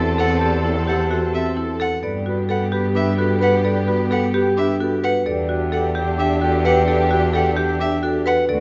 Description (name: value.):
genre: classical, minimalist pattern music.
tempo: 260 BPM (eighths).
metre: 7/8.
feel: straight.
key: unclear.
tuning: A4 = 439 Hz.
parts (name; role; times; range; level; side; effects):
vibraphone with medium hard mallets; melody; 0.0-8.6 s; G4 to D5; -31 LUFS; equal; none.
mellow soprano saxophone; second line; 0.0-8.6 s; F#4 to B4; -27 LUFS; equal; none.
rich studio string section; sustained chords; 0.0-8.6 s; B3 to A4; -29 LUFS; equal; none.
marimba with medium hard mallets; arpeggios; 0.0-8.6 s; C4 to B4; -24 LUFS; equal; none.
rich cello; bass; 0.0-8.6 s; D2 to G2; -25 LUFS; equal; none.
rich violin; arpeggios; 0.2-8.4 s; E5 to F#5; -30 LUFS; equal; none.
room: wet recital hall reverb, RT60 1.3 s.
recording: nothing above 7.6 kHz.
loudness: -19 LUFS.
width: mono.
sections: 0.0-8.6 A section.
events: none.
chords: 0.0 C6/E; 2.0 Gmaj9; 5.3 Em11.